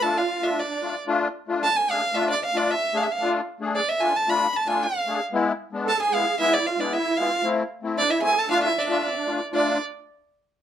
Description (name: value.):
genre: klezmer.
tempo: 114 BPM.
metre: 2/4.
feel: straight.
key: D dorian sharp4.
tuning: A4 = 440 Hz.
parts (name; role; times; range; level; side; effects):
clear violin; melody; 0.0-9.8 s; D5 to B5; -23 LUFS; right 2 dB; none.
musette accordion; second line; 0.0-0.9, 5.8-9.8 s; C4 to A4; -27 LUFS; right 4 dB; none.
musette accordion; accompaniment; 0.0-9.8 s; G#3 to G#4; -26 LUFS; left 4 dB; none.
room: moderate studio reverb, RT60 0.6 s.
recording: dark, warm production.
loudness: -21 LUFS.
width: side -10 dB against mid.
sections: 0.0-1.1 A section; 1.1-9.5 B section; 9.5-10.6 C section.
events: none.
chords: 0.0 Dm; 5.3 E; 7.4 Am; 8.5 Dm.